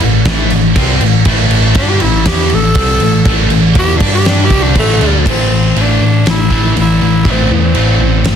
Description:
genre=hard rock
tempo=120 BPM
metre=4/4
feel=straight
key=A minor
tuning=A4 = 437 Hz
part: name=cranked stack guitar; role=riff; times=0.0-8.4 s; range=A2 to G4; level=-16 LUFS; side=left 11 dB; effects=overdrive
part: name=heavy high-gain guitar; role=riff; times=0.0-8.4 s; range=A2 to G4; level=-20 LUFS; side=right 13 dB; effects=distortion
part: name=scooped high-gain guitar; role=riff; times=0.0-8.4 s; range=A2 to G4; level=-20 LUFS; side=right 1 dB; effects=distortion
part: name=overdriven picked electric bass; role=bass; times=0.0-8.4 s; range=G1 to G2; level=-13 LUFS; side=right 1 dB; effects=none
part: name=big rock drum kit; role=drums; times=0.0-8.4 s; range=crash cymbal, kick drum, snare drum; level=-14 LUFS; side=right 1 dB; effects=soft clipping on kick
part: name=growling tenor saxophone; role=melody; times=1.8-8.4 s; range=A3 to A4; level=-17 LUFS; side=right 1 dB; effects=analog delay
room=light reverb, small room ambience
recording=dense, heavily limited modern master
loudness=-8 LUFS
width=side -8 dB against mid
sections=0.0-5.3 A section; 5.3-8.4 B section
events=tenor saxophone solo 0.0-5.3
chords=0.0 Am; 4.0 G5; 4.5 Am

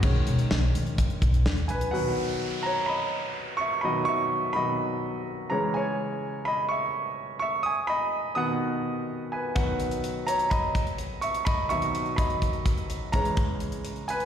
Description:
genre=piano-driven pop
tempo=126 BPM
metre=4/4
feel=straight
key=B major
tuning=A4 = 440 Hz
part: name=bright concert grand piano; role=accompaniment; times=0.0-14.3 s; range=B2 to D#6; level=-27 LUFS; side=right 1 dB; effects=slapback echo
part: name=upright bass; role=bass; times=0.0-1.9 s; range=A#1 to D#2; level=-24 LUFS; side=equal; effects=none
part: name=modern studio drum kit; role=drums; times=0.0-1.9, 9.6-14.3 s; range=crash cymbal, hi-hat, kick drum, snare drum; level=-28 LUFS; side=equal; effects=none
part: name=downlifter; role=sound effects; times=1.9-5.7 s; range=none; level=-38 LUFS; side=equal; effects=slapback echo
room=light reverb, small room ambience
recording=live gig heard through the venue's PA, recital hall reverb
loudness=-25 LUFS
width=side -9 dB against mid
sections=0.0-1.9 A section; 1.9-14.3 B section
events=grand piano solo 0.0-1.9, 1.9-14.3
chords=0.0 B6; 1.9 B; 5.5 C#m; 7.7 G#m; 9.6 B; 13.1 C#m

